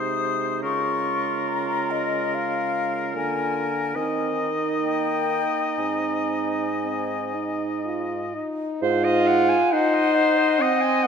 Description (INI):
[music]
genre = classical, slow romantic movement for wind quintet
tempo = 56-75 BPM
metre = 3/4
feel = rubato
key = Ab major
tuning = A4 = 439 Hz
[part]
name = mellow silver concert flute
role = melody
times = 0.0-11.1 s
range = Eb5 to Eb6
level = -28 LUFS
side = left 9 dB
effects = none
[part]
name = clear oboe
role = second line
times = 0.0-11.1 s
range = Bb4 to Eb5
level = -27 LUFS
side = left 2 dB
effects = none
[part]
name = clear French horn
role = accompaniment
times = 0.0-11.1 s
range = Ab3 to F4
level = -26 LUFS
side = equal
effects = none
[part]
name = clear clarinet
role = accompaniment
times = 0.0-11.1 s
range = Eb4 to Ab5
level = -28 LUFS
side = right 8 dB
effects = none
[part]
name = dark bassoon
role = bass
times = 0.0-9.6 s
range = Ab2 to Eb3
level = -29 LUFS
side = right 2 dB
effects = none
[sound]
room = wet concert hall reverb, RT60 1.9 s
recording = none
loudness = -21 LUFS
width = side -6 dB against mid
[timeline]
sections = 0.0-8.8 A section; 8.8-11.1 B section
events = none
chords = 0.0 Ab/C; 0.6 Bbm7/Db; 3.2 Bb7/D; 4.0 Ab/Eb; 4.8 Eb; 5.8 Ab; 8.8 Ab7